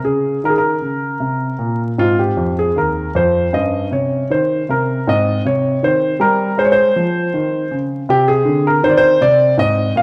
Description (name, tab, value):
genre	classical, baroque-style suite movement for grand piano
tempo	79 BPM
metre	4/4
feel	rubato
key	Ab major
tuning	A4 = 440 Hz
part	warm concert grand piano	solo	0.0-10.0 s	Eb2 to F5	-16 LUFS	equal	none
room	moderate recital hall reverb, RT60 1.6 s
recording	vinyl crackle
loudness	-16 LUFS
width	mono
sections	0.0-10.0 A section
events	none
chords	0.0 Eb5; 2.0 Ab; 3.5 Eb7/G; 5.1 Ab; 8.1 Cm